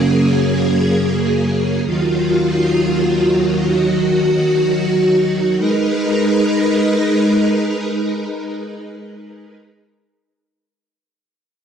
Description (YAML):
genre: dream pop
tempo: free time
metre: none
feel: none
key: G# dorian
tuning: A4 = 440 Hz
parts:
  - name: string machine, violins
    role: sustained chords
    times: 0.0-9.5 s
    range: D#2 to B4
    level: -14 LUFS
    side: equal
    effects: ensemble chorus
room: light reverb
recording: dry, gritty hardware recording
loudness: -14 LUFS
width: side -8 dB against mid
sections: 0.0-5.6 A section; 5.6-9.3 B section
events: none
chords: 0.0 F#add9; 1.8 D#madd9; 5.6 G#madd9